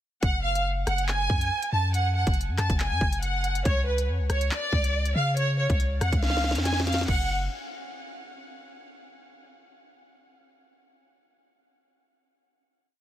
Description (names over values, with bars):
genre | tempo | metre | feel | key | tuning
hip hop, drill | 140 BPM | 4/4 | half-time | F# harmonic minor | A4 = 438 Hz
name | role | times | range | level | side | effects
warm symphonic violin section | melody | 0.2-7.3 s | B4 to A5 | -28 LUFS | right 1 dB | ping-pong delay
long sustained 808-style bass | bass | 0.2-7.5 s | F#1 to C#3 | -27 LUFS | equal | none
drill drum kit | drums | 0.2-7.2 s | crash cymbal, handclaps, hi-hat, kick drum, rim click, snare drum | -27 LUFS | equal | none
room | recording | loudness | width
little or no reverb | dense, heavily limited modern master | -23 LUFS | side -12 dB against mid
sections
0.2-7.1 hook; 7.1-8.8 final note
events
drum fill 6.2-7.1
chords
0.2 F#sus2; 3.7 C#; 7.1 N.C.